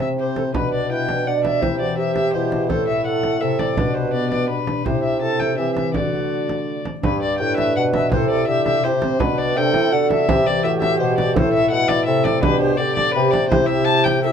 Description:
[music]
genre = classical, renaissance-style consort dance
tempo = 167 BPM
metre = 3/4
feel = straight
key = unclear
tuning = A4 = 442 Hz
[part]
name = dark violin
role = melody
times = 0.0-14.3 s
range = B4 to A5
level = -22 LUFS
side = left 3 dB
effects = none
[part]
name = concert harp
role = accompaniment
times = 0.0-14.3 s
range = G2 to C5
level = -25 LUFS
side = left 9 dB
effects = none
[part]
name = dark trombone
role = accompaniment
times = 0.0-14.3 s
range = B3 to G4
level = -25 LUFS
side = left 1 dB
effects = none
[part]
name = mellow bassoon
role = bass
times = 0.0-14.3 s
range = G2 to E3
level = -24 LUFS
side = right 2 dB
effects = none
[part]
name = frame drum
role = percussion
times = 0.0-14.2 s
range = none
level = -25 LUFS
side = right 3 dB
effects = none
[part]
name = mellow alto recorder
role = second line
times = 0.2-14.3 s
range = F#4 to D5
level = -24 LUFS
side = right 7 dB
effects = none
[sound]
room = moderate large studio reverb, RT60 0.9 s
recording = minimal, uncompressed stereo recording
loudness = -17 LUFS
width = side -7 dB against mid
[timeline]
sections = 0.0-7.0 A section; 7.0-14.3 A section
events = none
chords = 0.0 C; 0.5 Bm; 1.6 C; 2.7 Am; 3.8 G/B; 4.9 C; 5.9 D; 7.0 G; 8.1 C; 9.2 Bm; 10.3 C; 11.4 Am; 12.4 G/B; 13.5 C

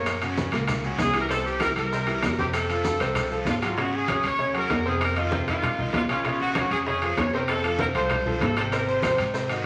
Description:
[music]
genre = latin, salsa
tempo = 194 BPM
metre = 4/4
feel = straight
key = unclear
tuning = A4 = 436 Hz
[part]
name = clear horn section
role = melody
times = 0.0-9.2 s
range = F4 to Db5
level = -29 LUFS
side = equal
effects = none
[part]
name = bright grand piano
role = accompaniment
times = 0.0-9.7 s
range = Bb2 to Db5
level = -31 LUFS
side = equal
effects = none
[part]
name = upright bass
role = bass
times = 0.0-9.6 s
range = Ab1 to Ab2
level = -35 LUFS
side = equal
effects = none
[part]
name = bongos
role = percussion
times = 0.1-9.5 s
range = none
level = -38 LUFS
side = equal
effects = none
[part]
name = congas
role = percussion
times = 0.1-9.7 s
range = none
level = -36 LUFS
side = equal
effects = none
[part]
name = guiro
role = percussion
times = 0.1-9.7 s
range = none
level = -41 LUFS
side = equal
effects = none
[part]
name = maracas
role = percussion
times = 0.1-3.8, 8.7-9.7 s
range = none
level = -45 LUFS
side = equal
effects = none
[part]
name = timbales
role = percussion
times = 0.1-9.7 s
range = none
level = -32 LUFS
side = equal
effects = none
[sound]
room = wet large studio reverb, RT60 1.1 s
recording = vinyl crackle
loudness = -25 LUFS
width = mono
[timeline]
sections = 0.0-3.8 A section; 3.8-9.7 B section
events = none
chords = 0.1 Gb; 1.3 C7; 2.5 F; 3.8 Ab7sus4; 5.0 F7sus4; 6.2 Bbm7; 7.5 F; 8.7 Ab7

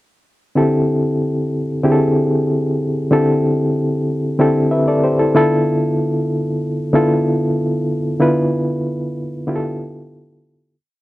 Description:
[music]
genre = soul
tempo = 94 BPM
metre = 4/4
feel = straight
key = D dorian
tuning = A4 = 438 Hz
[part]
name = barky reed electric piano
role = solo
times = 0.6-10.8 s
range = D3 to E5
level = -15 LUFS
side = equal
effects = overdrive, fast tremolo
[sound]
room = light reverb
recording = dry, close 1970s-style studio recording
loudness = -15 LUFS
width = side -17 dB against mid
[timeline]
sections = 0.6-10.7 A section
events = fade-out 8.2-10.7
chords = 0.6 D13sus4; 5.3 Dm69

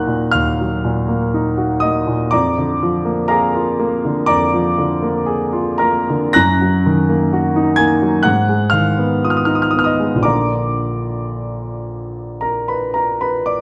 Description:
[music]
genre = classical, romantic nocturne for solo piano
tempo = 52-64 BPM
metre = 4/4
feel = rubato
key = unclear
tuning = A4 = 440 Hz
[part]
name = warm grand piano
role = solo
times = 0.0-13.6 s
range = Bb1 to Bb6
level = -17 LUFS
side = equal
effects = none
[sound]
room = wet recital hall reverb, RT60 1.3 s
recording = none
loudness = -17 LUFS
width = mono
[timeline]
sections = 0.0-13.6 A section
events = none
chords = 0.0 Ebm; 2.3 Bb7/F; 6.3 Ebm/Gb; 8.2 Fm7b5/Ab; 10.2 Bb

